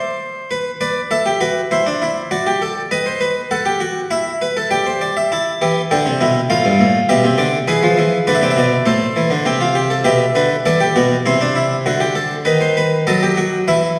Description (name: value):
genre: classical, baroque-style 3-part fugue for harpsichord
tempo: 100 BPM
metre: 4/4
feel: straight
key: A minor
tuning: A4 = 442 Hz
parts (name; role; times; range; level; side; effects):
- harpsichord; solo; 0.0-14.0 s; G2 to A5; -16 LUFS; equal; none
room: wet recital hall reverb, RT60 1.7 s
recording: heard from further back in the room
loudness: -16 LUFS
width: mono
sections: 0.0-14.0 A section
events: none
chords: 0.0 N.C.; 0.5 Em/B; 1.7 Am; 2.9 B7; 4.1 Em; 5.3 Am/E; 6.5 Dm; 7.7 E7; 8.9 Am; 10.1 Em/B; 11.3 Am/C; 12.5 B7/D#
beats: | 0.51 1.11 1.71 2.31 | 2.91 3.51 4.11 4.71 | 5.31 5.91 6.50 7.09 | 7.69 8.28 8.87 9.46 | 10.06 10.66 11.27 11.86 | 12.46 13.07 13.68